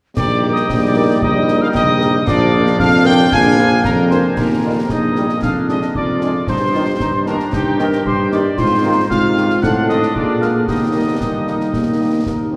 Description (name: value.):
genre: military-style march for wind band.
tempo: 114 BPM.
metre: 2/4.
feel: straight.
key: Eb major.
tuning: A4 = 442 Hz.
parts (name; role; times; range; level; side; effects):
mellow trumpet section; melody; 0.2-12.6 s; G4 to Ab5; -25 LUFS; equal; none.
mellow piccolo; second line; 0.2-12.2 s; G5 to Ab6; -25 LUFS; equal; none.
warm woodwind section; second line; 0.2-12.5 s; D4 to G5; -26 LUFS; equal; none.
bright trombone section; sustained chords; 0.2-12.6 s; Eb3 to F4; -27 LUFS; equal; none.
warm tuba; bass; 0.2-12.6 s; Bb1 to Bb2; -19 LUFS; equal; none.
concert snare drum, clash cymbals and concert bass drum; drums; 0.2-12.5 s; none; -26 LUFS; equal; none.
mellow French horn section; accompaniment; 0.4-12.5 s; Bb3 to Bb4; -27 LUFS; equal; none.
mellow euphonium; second line; 11.2-12.6 s; G3 to C4; -27 LUFS; equal; none.
room: wet cathedral reverb, RT60 6.0 s.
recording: recorded in a church or concert hall.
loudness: -15 LUFS.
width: mono.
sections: 0.2-4.4 A section; 4.4-12.6 B section.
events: none.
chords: 0.2 Eb/Bb; 2.3 Bb7; 4.4 Eb; 5.4 Ddim/F; 6.5 Eb/G; 8.6 Fm7/Ab; 9.6 Adim7; 10.2 Bb7; 10.7 Eb.